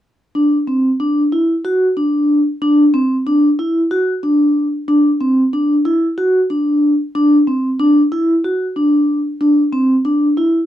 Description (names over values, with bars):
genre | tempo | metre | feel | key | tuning
progressive instrumental, progressive | 186 BPM (eighths) | 7/8 | straight | D mixolydian | A4 = 442 Hz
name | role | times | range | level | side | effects
vibraphone with medium mallets | solo | 0.3-10.6 s | C4 to F#4 | -13 LUFS | equal | none
room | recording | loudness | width
light reverb | dry, close 1970s-style studio recording | -13 LUFS | side -12 dB against mid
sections
0.4-10.7 A section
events
none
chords
none